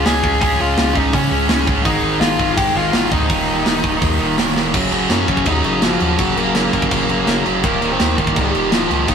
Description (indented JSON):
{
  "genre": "punk rock",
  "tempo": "166 BPM",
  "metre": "4/4",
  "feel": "straight",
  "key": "unclear",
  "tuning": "A4 = 440 Hz",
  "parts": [
    { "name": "dark smooth lead guitar", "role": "melody", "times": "0.0-9.1 s", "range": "F3 to Ab5", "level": "-20 LUFS", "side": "left 3 dB", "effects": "overdrive" },
    { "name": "crunchy overdriven guitar", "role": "riff", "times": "0.0-9.1 s", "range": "Eb2 to Ab4", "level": "-24 LUFS", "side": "left 6 dB", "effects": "none" },
    { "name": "distorted electric guitar", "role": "riff", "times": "0.0-9.1 s", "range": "Eb2 to Db4", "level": "-20 LUFS", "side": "right 7 dB", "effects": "overdrive" },
    { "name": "high-gain distorted guitar", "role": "riff", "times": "0.0-9.1 s", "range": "Eb2 to Db4", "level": "-24 LUFS", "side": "equal", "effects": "distortion" },
    { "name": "saturated sub bass", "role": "bass", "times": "0.0-9.1 s", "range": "Eb1 to Db3", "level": "-24 LUFS", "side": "equal", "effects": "none" },
    { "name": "tight metal drum kit", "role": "drums", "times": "0.1-9.1 s", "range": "crash cymbal, hi-hat, kick drum, snare drum", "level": "-19 LUFS", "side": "equal", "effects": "none" }
  ],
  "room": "light reverb",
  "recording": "rough rehearsal-room recording",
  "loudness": "-14 LUFS",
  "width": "side -7 dB against mid",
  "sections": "0.0-4.7 A section; 4.7-9.1 B section",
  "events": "drum fill 4.6",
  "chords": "0.0 Db; 1.9 Ab; 3.3 Eb; 4.7 Gb; 7.6 Eb"
}